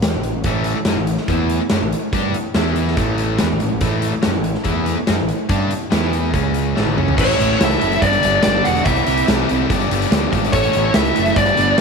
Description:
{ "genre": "classic rock", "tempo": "143 BPM", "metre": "4/4", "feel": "straight", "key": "A mixolydian", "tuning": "A4 = 437 Hz", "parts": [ { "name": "growling picked electric bass", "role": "bass", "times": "0.0-11.7 s", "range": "E1 to G2", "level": "-22 LUFS", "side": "equal", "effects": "overdrive" }, { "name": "big rock drum kit", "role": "drums", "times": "0.0-11.8 s", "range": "crash cymbal, hi-hat, kick drum, snare drum, toms", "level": "-20 LUFS", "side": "equal", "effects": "none" }, { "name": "string machine, cellos", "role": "sustained chords", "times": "0.4-11.8 s", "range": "G#3 to E5", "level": "-28 LUFS", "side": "equal", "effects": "none" }, { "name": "cranked stack guitar", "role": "riff", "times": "0.5-11.8 s", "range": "G2 to A4", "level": "-23 LUFS", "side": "left 12 dB", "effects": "overdrive, spring reverb" }, { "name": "crunchy overdriven guitar", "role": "riff", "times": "0.5-11.8 s", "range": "G2 to G4", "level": "-23 LUFS", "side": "right 14 dB", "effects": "spring reverb" }, { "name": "smooth overdriven lead guitar", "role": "melody", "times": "7.2-11.8 s", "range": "C#5 to F#5", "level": "-18 LUFS", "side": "equal", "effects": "none" }, { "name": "octave-fuzz lead guitar", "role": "second line", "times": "7.2-11.8 s", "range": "C#4 to F#4", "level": "-28 LUFS", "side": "right 11 dB", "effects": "distortion" } ], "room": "light reverb, small room reverb", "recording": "1960s-style stereo with parts hard left and right", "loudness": "-15 LUFS", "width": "side -5 dB against mid", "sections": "0.0-7.2 A section; 7.2-11.8 B section", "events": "drum fill 6.8-7.2", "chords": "0.0 A; 2.6 E5; 3.0 A; 5.9 E5; 6.3 C#5; 6.8 A; 8.0 G; 8.9 C6; 9.7 G; 10.5 A" }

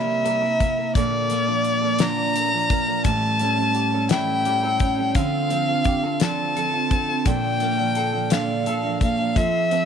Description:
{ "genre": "six-eight pop ballad", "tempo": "57 BPM (dotted quarters)", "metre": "6/8", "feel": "straight", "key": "unclear", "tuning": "A4 = 437 Hz", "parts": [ { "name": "warm violin", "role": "melody", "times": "0.0-9.9 s", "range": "D5 to Bb5", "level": "-23 LUFS", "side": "left 2 dB", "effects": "none" }, { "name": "clean electric guitar", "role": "accompaniment", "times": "0.0-9.9 s", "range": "A2 to Bb4", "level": "-24 LUFS", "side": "equal", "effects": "double-tracked left and right" }, { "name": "picked steel-string acoustic guitar", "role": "arpeggios", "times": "0.0-9.9 s", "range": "A2 to Bb4", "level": "-29 LUFS", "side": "right 11 dB", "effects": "none" }, { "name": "damped 70s drum kit", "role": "drums", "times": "0.3-9.9 s", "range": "hi-hat, kick drum, snare drum", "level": "-23 LUFS", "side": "left 2 dB", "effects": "none" } ], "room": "light reverb", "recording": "1960s-style stereo", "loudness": "-19 LUFS", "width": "side -7 dB against mid", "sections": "0.0-9.9 A section", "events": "none", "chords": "0.0 C7; 0.9 Bbmaj7; 3.1 A7; 5.2 Dm7; 7.3 Bbmaj7" }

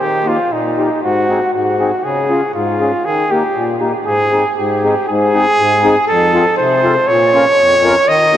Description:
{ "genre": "alpine folk, alpine dance band", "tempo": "119 BPM", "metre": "2/4", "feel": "straight", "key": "Ab major", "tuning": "A4 = 441 Hz", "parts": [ { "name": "mellow trumpet", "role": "melody", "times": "0.0-8.4 s", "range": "Eb4 to Eb5", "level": "-13 LUFS", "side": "right 1 dB", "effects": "tape echo" }, { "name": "mellow accordion", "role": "accompaniment", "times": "0.0-8.4 s", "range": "F2 to Bb4", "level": "-16 LUFS", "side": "left 2 dB", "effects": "none" } ], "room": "wet huge ambient reverb, RT60 7.9 s", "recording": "dreamy mix soaked in reverb", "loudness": "-11 LUFS", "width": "side -11 dB against mid", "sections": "0.0-5.1 A section; 5.1-8.4 A section", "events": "none", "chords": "0.0 Eb; 1.0 Ab7; 2.0 Db; 3.0 Eb; 4.1 Ab; 6.1 F; 7.1 Bbm" }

